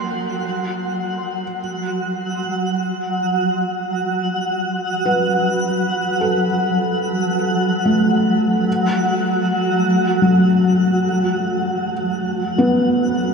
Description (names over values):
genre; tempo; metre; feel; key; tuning
ambient; free time; none; none; unclear; A4 = 437 Hz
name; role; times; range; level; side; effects
felt-muted upright piano; arpeggios; 0.0-13.3 s; F3 to G5; -20 LUFS; left 1 dB; ping-pong delay
twinkling granular texture; texture; 0.0-13.3 s; F#3 to F#5; -19 LUFS; right 1 dB; built-in reverb
room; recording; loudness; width
wet shimmer reverb, RT60 9.1 s; none; -17 LUFS; side -5 dB against mid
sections
0.0-13.3 A section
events
none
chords
0.0 F#madd11; 8.7 F#sus4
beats
free time